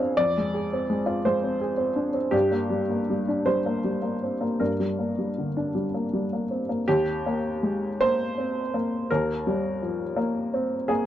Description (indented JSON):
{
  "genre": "neoclassical minimalist piano",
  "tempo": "54 BPM (dotted quarters)",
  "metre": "6/8",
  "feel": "uneven beats, rubato",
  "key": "Eb major",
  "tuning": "A4 = 438 Hz",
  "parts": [
    { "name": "warm upright piano", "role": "solo", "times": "0.0-11.1 s", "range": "Eb2 to F5", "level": "-23 LUFS", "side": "equal", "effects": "none" }
  ],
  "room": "light reverb",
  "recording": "worn, warbling old tape, cassette tape, warbly pitch drift",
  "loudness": "-23 LUFS",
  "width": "side -11 dB against mid",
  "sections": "0.0-6.9 A section; 6.9-11.1 B section",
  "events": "none",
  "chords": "0.0 Fm; 2.3 Gm; 6.9 Eb"
}